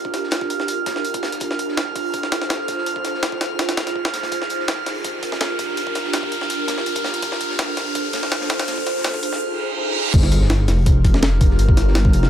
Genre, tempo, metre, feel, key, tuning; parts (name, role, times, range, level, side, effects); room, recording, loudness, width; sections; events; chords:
drum and bass, jungle; 165 BPM; 4/4; straight; G minor; A4 = 440 Hz
ethereal airy pad; sustained chords; 0.0-12.3 s; D4 to C5; -25 LUFS; right 1 dB; ensemble chorus, built-in reverb
jungle sampler-style drum kit; drums; 0.0-12.3 s; crash cymbal, hi-hat, kick drum, snare drum; -21 LUFS; equal; high-pass filter on hats, small room ambience, high-pass filter on kick, high-pass filter on snare, high-pass filter on cymbals
riser, reverse cymbal and sub drop; sound effects; 0.6-11.6 s; -28 LUFS; equal
drifting glass-harmonics texture; texture; 0.0-12.3 s; F6; -28 LUFS; right 5 dB; chorus, built-in reverb
crunchy breakbeat drum kit; drums; 0.1-12.2 s; hi-hat, snare drum; -34 LUFS; left 4 dB; high-pass filter on hats, small room ambience, high-pass filter on snare, high-pass filter on room
dark detuned saw bass; bass; 10.1-12.3 s; F1 to G1; -16 LUFS; equal; tube saturation
light reverb, digital ambience; -18 LUFS; side -10 dB against mid
0.0-10.1 A section; 10.1-12.3 B section
build-up 0.0-10.1; riser 0.6-9.4; reverse cymbal 9.4-10.1; drop 10.1-12.3; impact 10.1-11.6
0.0 Gm7; 1.4 Dm7; 2.9 Fm7; 4.3 Gm7; 7.2 Dm7; 8.7 Fm7; 10.1 Gm7